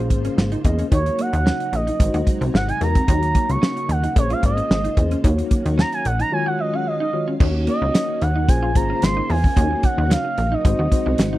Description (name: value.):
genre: early-eighties boogie funk.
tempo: 111 BPM.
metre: 4/4.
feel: straight.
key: Eb dorian.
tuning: A4 = 439 Hz.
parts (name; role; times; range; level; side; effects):
mellow tine electric piano; accompaniment; 0.0-11.4 s; Eb3 to Eb5; -26 LUFS; left 3 dB; medium stereo tremolo.
soft string machine; sustained chords; 0.0-11.4 s; C3 to F5; -32 LUFS; equal; ensemble chorus.
clean electric guitar; riff; 0.0-11.4 s; Bb3 to Gb4; -29 LUFS; right 2 dB; wide subtle chorus.
plucky analog bass; bass; 0.0-11.4 s; Ab1 to Fb2; -21 LUFS; equal; none.
damped 70s drum kit; drums; 0.1-11.3 s; crash cymbal, hi-hat, kick drum, snare drum; -18 LUFS; equal; none.
expressive portamento lead; melody; 0.9-11.4 s; Db5 to Db6; -24 LUFS; right 2 dB; chorus, slapback echo.
room: little or no reverb.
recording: dry, close 1970s-style studio recording.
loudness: -17 LUFS.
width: side -16 dB against mid.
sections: 0.0-7.4 A section; 7.4-11.4 B section.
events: analog synth lead solo 0.0-7.4; break 6.3-7.4.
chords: 0.0 Bbm9; 0.9 Ebm7; 2.0 Ab7; 3.1 Ebm7; 4.2 Bbm9; 5.2 Ebm7; 6.3 Ebm11; 7.4 Ebm7; 8.5 Bbm9; 9.6 Ebm7; 10.6 Ab7.